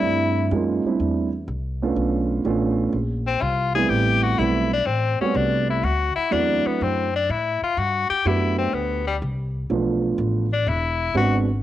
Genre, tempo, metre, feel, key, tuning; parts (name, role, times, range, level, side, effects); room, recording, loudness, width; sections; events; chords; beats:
jazz, small-group swing and bop; 124 BPM; 4/4; swing 69% on 8ths; G major; A4 = 440 Hz
bright tenor saxophone; melody; 0.0-11.4 s; G3 to Ab4; -22 LUFS; left 5 dB
dark baby grand piano; accompaniment; 0.0-11.5 s; F3 to G4; -22 LUFS; right 4 dB
upright bass; bass; 0.0-11.6 s; E1 to A2; -25 LUFS; equal
light reverb, studio reverb; home recording on cassette; -20 LUFS; side -13 dB against mid
0.0-11.6 A section
0.0 C6; 2.0 Bm7b5; 2.9 Bbsus2; 3.9 Am7; 5.8 D7; 7.8 Gmaj7; 9.7 Bm7b5; 10.7 E7b13
| 0.03 0.52 1.00 1.48 | 1.97 2.45 2.93 3.41 | 3.90 4.38 4.86 5.35 | 5.83 6.31 6.80 7.28 | 7.76 8.25 8.73 9.21 | 9.70 10.18 10.66 11.15